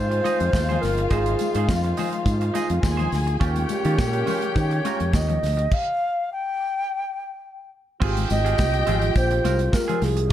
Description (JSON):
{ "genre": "disco", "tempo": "104 BPM", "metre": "4/4", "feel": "straight", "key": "Ab major", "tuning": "A4 = 440 Hz", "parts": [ { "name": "mellow alto flute", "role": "melody", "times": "0.0-10.3 s", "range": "Ab4 to G5", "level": "-25 LUFS", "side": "equal", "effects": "none" }, { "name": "dark studio string section", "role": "second line", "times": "0.0-10.3 s", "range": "F4 to Ab5", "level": "-30 LUFS", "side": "left 1 dB", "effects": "none" }, { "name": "dark French horn section", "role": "sustained chords", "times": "0.0-10.3 s", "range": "C3 to F4", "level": "-31 LUFS", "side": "right 2 dB", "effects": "none" }, { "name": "clear horn section", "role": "stabs", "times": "0.0-5.4 s", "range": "Ab3 to Db5", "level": "-34 LUFS", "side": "left 4 dB", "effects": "none" }, { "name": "fingered electric bass", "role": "bass", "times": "0.0-10.3 s", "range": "G1 to Eb3", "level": "-23 LUFS", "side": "equal", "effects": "none" }, { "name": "semi-hollow electric guitar", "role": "accompaniment", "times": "0.1-10.3 s", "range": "C4 to Eb5", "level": "-32 LUFS", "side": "right 7 dB", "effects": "spring reverb" }, { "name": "modern studio drum kit", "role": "drums", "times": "0.1-10.3 s", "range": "crash cymbal, hi-hat, kick drum, snare drum", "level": "-26 LUFS", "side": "equal", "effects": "none" }, { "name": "congas", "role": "percussion", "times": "0.2-10.2 s", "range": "none", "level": "-32 LUFS", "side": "left 8 dB", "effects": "none" }, { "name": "tambourine", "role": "percussion", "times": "0.3-9.9 s", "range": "none", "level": "-44 LUFS", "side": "left 5 dB", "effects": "none" } ], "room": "light reverb, studio reverb", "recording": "dark, warm production", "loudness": "-20 LUFS", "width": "side -11 dB against mid", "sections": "0.0-8.0 A section; 8.0-10.3 B section", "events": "stop 5.7-8.0", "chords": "0.0 Fm7; 3.4 Eb9; 8.0 Ab6" }